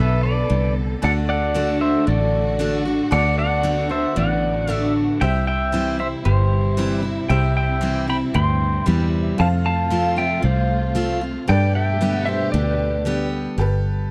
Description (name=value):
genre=country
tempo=115 BPM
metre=4/4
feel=straight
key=G major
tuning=A4 = 440 Hz
part: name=pedal steel guitar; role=melody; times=0.0-13.3 s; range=G4 to C6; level=-25 LUFS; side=equal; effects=none
part: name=picked steel-string acoustic guitar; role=accompaniment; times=0.0-14.1 s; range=F2 to G4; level=-26 LUFS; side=equal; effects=none
part: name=tack piano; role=accompaniment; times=0.0-14.1 s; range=D4 to F5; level=-36 LUFS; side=equal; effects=none
part: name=warm studio string section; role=sustained chords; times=0.0-13.6 s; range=B2 to A4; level=-33 LUFS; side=equal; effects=none
part: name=fingered electric bass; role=bass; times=0.0-14.1 s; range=G1 to G2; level=-24 LUFS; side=equal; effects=none
room=small room ambience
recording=dry, close 1970s-style studio recording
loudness=-20 LUFS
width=mono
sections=0.0-13.6 A section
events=none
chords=0.0 G; 1.0 D; 5.2 C; 9.4 F; 11.5 Gadd9